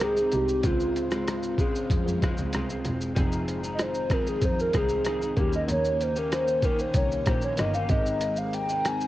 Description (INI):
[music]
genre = indie pop, bedroom pop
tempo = 95 BPM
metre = 4/4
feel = straight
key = F minor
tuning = A4 = 440 Hz
[part]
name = warbly nostalgic lead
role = melody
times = 0.0-9.1 s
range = F4 to Ab5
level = -27 LUFS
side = equal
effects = wide subtle chorus, cassette tape
[part]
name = electric guitar through a small old amp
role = accompaniment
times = 0.0-9.1 s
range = Db3 to Ab4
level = -32 LUFS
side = left 1 dB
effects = analog chorus, vibrato effect, cassette tape
[part]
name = string machine, full ensemble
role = sustained chords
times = 0.0-9.1 s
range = Db3 to G5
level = -36 LUFS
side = right 1 dB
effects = ensemble chorus, cassette tape
[part]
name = bright double bass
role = bass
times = 0.0-9.1 s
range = E1 to F2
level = -32 LUFS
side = equal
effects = none
[part]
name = lo-fi sampler-style drum kit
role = drums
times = 0.0-9.1 s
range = hi-hat, kick drum, rim click, shaker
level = -28 LUFS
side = equal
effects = cassette tape
[sound]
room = light reverb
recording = home recording on cassette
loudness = -24 LUFS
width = side -15 dB against mid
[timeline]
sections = 0.0-9.1 A section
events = soft synth lead solo 0.0-9.1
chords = 0.0 Abmaj7; 0.6 Dbmaj7; 3.2 Fm7; 5.4 Eb7; 7.9 Abmaj7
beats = 0.01 | 0.64 1.27 1.90 2.54 | 3.17 3.80 4.43 5.06 | 5.69 6.32 6.96 7.59 | 8.22 8.85